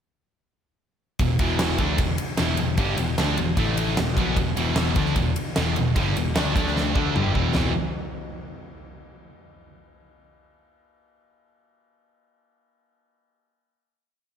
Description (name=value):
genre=hard rock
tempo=151 BPM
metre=4/4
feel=straight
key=E minor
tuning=A4 = 437 Hz
part: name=distorted electric guitar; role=riff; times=1.2-7.7 s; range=E2 to D4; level=-31 LUFS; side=equal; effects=overdrive
part: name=high-gain distorted guitar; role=riff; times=1.2-7.7 s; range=E2 to D4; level=-28 LUFS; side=right 9 dB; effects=distortion, slapback echo
part: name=overdriven semi-hollow guitar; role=riff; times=1.2-7.7 s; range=E2 to D4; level=-28 LUFS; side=left 7 dB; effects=none
part: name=picked electric bass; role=bass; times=1.2-7.7 s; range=E1 to D2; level=-27 LUFS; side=equal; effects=none
part: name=huge arena drum kit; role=drums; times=1.2-7.6 s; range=kick drum, ride cymbal, snare drum, toms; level=-25 LUFS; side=equal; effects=none
room=moderate lush hall reverb, RT60 1.7 s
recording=big arena sound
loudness=-20 LUFS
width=side -8 dB against mid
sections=1.2-7.5 riff; 7.5-9.1 final chord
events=drum fill 6.8-7.5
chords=1.2 Em; 3.6 A5; 4.0 Em; 6.6 D5; 7.0 Em; 7.5 E5